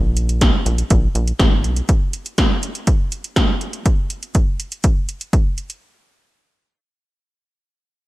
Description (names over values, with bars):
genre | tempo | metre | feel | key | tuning
synth-pop | 122 BPM | 4/4 | straight | unclear | A4 = 440 Hz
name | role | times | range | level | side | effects
rubbery square bass | bass | 0.0-1.8 s | Ab1 to Cb2 | -18 LUFS | equal | none
80s electronic pad drums | drums | 0.2-5.8 s | hi-hat, kick drum, snare drum | -16 LUFS | equal | gated reverb
room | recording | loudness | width
little or no reverb | none | -16 LUFS | side -18 dB against mid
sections
0.0-5.8 A section; 5.8-8.1 B section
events
none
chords
none